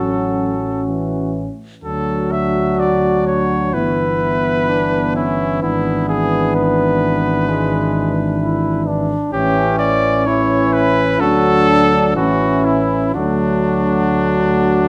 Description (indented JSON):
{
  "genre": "classical, brass quintet",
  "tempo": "64 BPM",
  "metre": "4/4",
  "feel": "straight",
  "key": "D major",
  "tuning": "A4 = 440 Hz",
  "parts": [
    { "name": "bright trumpet", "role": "melody", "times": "0.0-14.9 s", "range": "D4 to E5", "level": "-22 LUFS", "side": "equal", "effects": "none" },
    { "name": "mellow flugelhorn", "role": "second line", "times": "0.0-14.9 s", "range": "G#3 to F#4", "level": "-24 LUFS", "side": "equal", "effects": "none" },
    { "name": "clear trombone", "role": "accompaniment", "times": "0.0-14.9 s", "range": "E3 to F#3", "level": "-23 LUFS", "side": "equal", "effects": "none" },
    { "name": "mellow French horn", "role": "accompaniment", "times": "0.0-14.9 s", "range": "A3 to D4", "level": "-25 LUFS", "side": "equal", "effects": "none" },
    { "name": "dark tuba", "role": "bass", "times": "0.0-14.9 s", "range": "G1 to D2", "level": "-24 LUFS", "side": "equal", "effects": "none" }
  ],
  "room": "moderate recital hall reverb, RT60 1.4 s",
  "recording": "none",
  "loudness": "-16 LUFS",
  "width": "mono",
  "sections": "0.0-14.9 A section",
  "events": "none",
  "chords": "0.0 A; 1.8 D; 3.7 Em/G; 5.6 E7/G#; 9.3 A; 11.2 D; 12.2 A; 13.1 D"
}